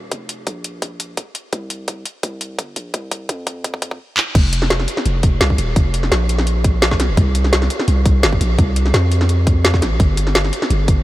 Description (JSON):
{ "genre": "liquid drum and bass", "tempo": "170 BPM", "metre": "4/4", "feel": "straight", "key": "unclear", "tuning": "A4 = 440 Hz", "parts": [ { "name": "long sustained 808-style bass", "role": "bass", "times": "0.0-11.0 s", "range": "Eb1 to F2", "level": "-18 LUFS", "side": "equal", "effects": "high-pass filter" }, { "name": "drum and bass drum kit", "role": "drums", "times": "0.1-11.0 s", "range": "crash cymbal, handclaps, hi-hat, snare drum", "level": "-19 LUFS", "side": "equal", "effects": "none" }, { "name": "electronic kick drum", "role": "drums", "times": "0.1-11.0 s", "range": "none", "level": "-17 LUFS", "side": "equal", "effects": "high-pass filter on kick, high-pass filter on room" } ], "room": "light reverb", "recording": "none", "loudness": "-15 LUFS", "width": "side -16 dB against mid", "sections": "0.0-4.4 A section; 4.4-11.0 B section", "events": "build-up 0.0-4.4; drum fill 1.5-4.0, 4.2; drop 4.4-11.0", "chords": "none" }